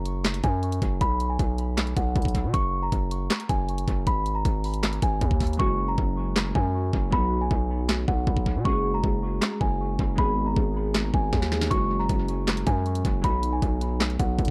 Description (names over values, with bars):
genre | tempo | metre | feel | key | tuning
hip hop, trap | 157 BPM | 4/4 | half-time | F# major | A4 = 439 Hz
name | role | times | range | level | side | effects
celesta | melody | 0.0-14.5 s | F#5 to C#6 | -33 LUFS | equal | dub echo
distorted 808-style bass | bass | 0.0-14.5 s | F#1 to B2 | -29 LUFS | equal | distortion
trap drum kit | drums | 0.1-14.5 s | handclaps, hi-hat, kick drum, snare drum | -28 LUFS | equal | dub echo
glassy digital keys | accompaniment | 5.6-14.5 s | F#3 to G#4 | -33 LUFS | equal | chorus, dub echo
room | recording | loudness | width
digital ambience | echo-heavy mix | -25 LUFS | mono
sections
0.0-14.5 A section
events
hi-hats muted 5.6-11.7; drum fill 11.3-11.7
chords
0.0 F#sus2; 1.0 B5; 2.5 F#sus2; 4.1 G#5; 5.6 F#sus2; 7.1 B; 8.7 F#sus2; 10.2 G#m; 11.7 F#sus2; 13.2 B